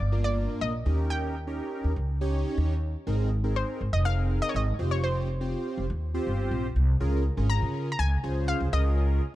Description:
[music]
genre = dance-pop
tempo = 122 BPM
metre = 4/4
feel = straight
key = unclear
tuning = A4 = 440 Hz
[part]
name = analog pluck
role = melody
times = 0.0-9.3 s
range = C5 to Bb5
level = -32 LUFS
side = left 2 dB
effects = chorus, tape echo
[part]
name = upright bass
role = bass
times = 0.0-9.2 s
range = F1 to Db3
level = -26 LUFS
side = equal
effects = none
[part]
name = big bright polysynth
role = accompaniment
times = 0.1-9.2 s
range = Bb3 to Db5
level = -32 LUFS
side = right 1 dB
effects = chorus
[sound]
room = studio ambience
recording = dark, warm production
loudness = -25 LUFS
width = side -15 dB against mid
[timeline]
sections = 0.0-7.0 A section; 7.0-9.3 B section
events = none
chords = 0.0 Bb; 0.9 Eb7; 3.1 Abadd9; 4.8 Fsus2; 7.0 Db6; 8.7 Bbm7/Db

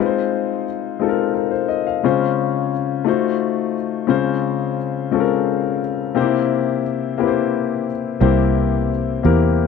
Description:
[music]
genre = slow gospel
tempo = 58 BPM (dotted quarters)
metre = 6/8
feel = straight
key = F minor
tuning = A4 = 440 Hz
[part]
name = warm grand piano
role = accompaniment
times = 0.0-9.7 s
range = C3 to F5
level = -18 LUFS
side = left 10 dB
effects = none
[part]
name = fingered electric bass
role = bass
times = 8.2-9.7 s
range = C2 to E2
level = -17 LUFS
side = right 3 dB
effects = none
[sound]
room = light reverb, small room ambience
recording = 1960s-style stereo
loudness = -17 LUFS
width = side -5 dB against mid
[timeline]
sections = 0.0-9.7 A section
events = none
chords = 0.0 Fm7; 2.0 Dbmaj7; 3.1 F7b9; 4.1 Dbmaj7; 6.2 C7

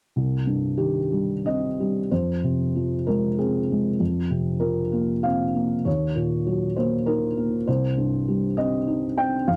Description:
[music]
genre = neoclassical minimalist piano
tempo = 86-101 BPM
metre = 3/4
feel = rubato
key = unclear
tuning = A4 = 441 Hz
[part]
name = felt-muted upright piano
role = solo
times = 0.2-9.6 s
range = C2 to G5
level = -24 LUFS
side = equal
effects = none
[sound]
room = moderate booth ambience, RT60 0.2 s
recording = dry, close 1970s-style studio recording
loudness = -24 LUFS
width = mono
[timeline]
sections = 0.2-9.6 A section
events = none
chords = 0.2 Cm; 2.1 Fm; 4.0 Bbsus2/F; 5.9 Ebm; 7.7 Cm

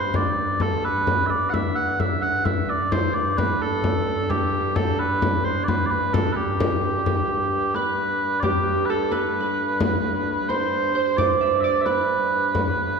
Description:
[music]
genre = medieval dance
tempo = 87 BPM (dotted quarters)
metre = 6/8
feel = straight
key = G major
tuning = A4 = 439 Hz
[part]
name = mellow small bagpipes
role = melody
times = 0.0-13.0 s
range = G4 to F#5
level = -23 LUFS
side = right 2 dB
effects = none
[part]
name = dark hurdy-gurdy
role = drone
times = 0.0-13.0 s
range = G2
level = -29 LUFS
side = left 1 dB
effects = none
[part]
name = frame drum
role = percussion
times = 0.1-12.8 s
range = none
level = -25 LUFS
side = left 2 dB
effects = none
[part]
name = Celtic harp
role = second line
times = 7.8-13.0 s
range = G4 to E5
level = -25 LUFS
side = right 7 dB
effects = none
[sound]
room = wet concert hall reverb, RT60 2.3 s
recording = heard from further back in the room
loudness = -20 LUFS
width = side -5 dB against mid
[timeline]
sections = 0.0-7.1 A section; 7.1-13.0 B section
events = none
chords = none

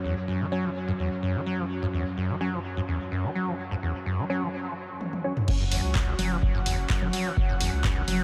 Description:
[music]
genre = acid house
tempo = 127 BPM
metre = 4/4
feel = straight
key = unclear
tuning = A4 = 441 Hz
[part]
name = lush unison pad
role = sustained chords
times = 0.0-8.2 s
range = F#2 to F#5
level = -36 LUFS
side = equal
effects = chorus, sidechain pumping
[part]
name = acid bass, saw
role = riff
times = 0.0-8.2 s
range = E2 to F#3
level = -32 LUFS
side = equal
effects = overdrive, subtle chorus, sidechain pumping, diffuse ambient delay
[part]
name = percussive organ stab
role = stabs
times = 0.5-5.3 s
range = F#3 to C#5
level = -39 LUFS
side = equal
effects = none
[part]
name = punchy analog drum machine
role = drums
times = 5.0-8.2 s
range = congas, crash cymbal, handclaps, hi-hat, toms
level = -34 LUFS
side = equal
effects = none
[part]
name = saturated sub bass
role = bass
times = 5.5-8.2 s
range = F#1 to C#2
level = -33 LUFS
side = equal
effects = tube saturation, sidechain pumping
[part]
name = electronic kick drum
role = drums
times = 5.5-7.9 s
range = none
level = -29 LUFS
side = equal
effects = none
[sound]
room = moderate huge ambient reverb, RT60 8.7 s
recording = dreamy mix soaked in reverb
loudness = -28 LUFS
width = mono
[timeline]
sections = 0.0-5.5 A section; 5.5-8.2 B section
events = drum fill 5.0-5.5; drop 5.5-8.2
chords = 0.0 F#5

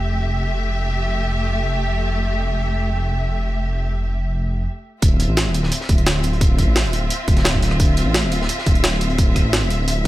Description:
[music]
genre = liquid drum and bass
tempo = 173 BPM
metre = 4/4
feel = straight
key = D minor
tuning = A4 = 440 Hz
[part]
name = warm symphonic string section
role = sustained chords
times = 0.0-10.1 s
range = A3 to E5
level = -25 LUFS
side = equal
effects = none
[part]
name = dark detuned saw bass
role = bass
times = 0.0-10.1 s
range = D1 to A1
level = -20 LUFS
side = equal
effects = none
[part]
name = crunchy breakbeat drum kit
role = drums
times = 5.0-10.1 s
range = hi-hat, snare drum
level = -30 LUFS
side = equal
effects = high-pass filter on hats, high-pass filter on snare, high-pass filter on room
[part]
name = electronic kick drum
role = drums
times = 5.0-10.1 s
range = none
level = -17 LUFS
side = equal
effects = none
[part]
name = jungle sampler-style drum kit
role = drums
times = 5.0-10.1 s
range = hi-hat, rim click, snare drum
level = -23 LUFS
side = right 1 dB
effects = none
[sound]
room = small room ambience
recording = none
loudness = -17 LUFS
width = side -16 dB against mid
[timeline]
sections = 0.0-5.0 A section; 5.0-10.1 B section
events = stop 4.7-5.0; drop 5.0-10.1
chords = 0.0 Fmaj9; 5.0 Dm9

